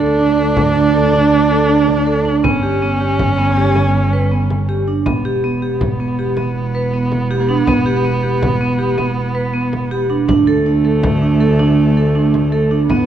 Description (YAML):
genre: contemporary instrumental, chamber music in an uneven meter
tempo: 161 BPM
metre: 7/4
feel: straight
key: unclear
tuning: A4 = 440 Hz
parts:
  - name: warm viola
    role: second line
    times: 0.0-13.1 s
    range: A3 to D4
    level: -18 LUFS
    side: equal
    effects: none
  - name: vibraphone with medium hard mallets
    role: arpeggios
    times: 0.0-13.0 s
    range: B3 to B4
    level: -17 LUFS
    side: right 3 dB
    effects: none
  - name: rich double bass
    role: bass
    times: 0.0-13.1 s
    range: E1 to E2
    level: -18 LUFS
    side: right 2 dB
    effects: none
  - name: frame drum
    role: percussion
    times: 0.2-13.1 s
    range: none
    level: -22 LUFS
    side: left 1 dB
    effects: none
room: moderate concert hall reverb, RT60 2.1 s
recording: dark, warm production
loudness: -13 LUFS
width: side -10 dB against mid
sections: 0.0-13.1 A section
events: none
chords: 0.0 D5; 2.4 G; 5.1 Em; 10.3 D5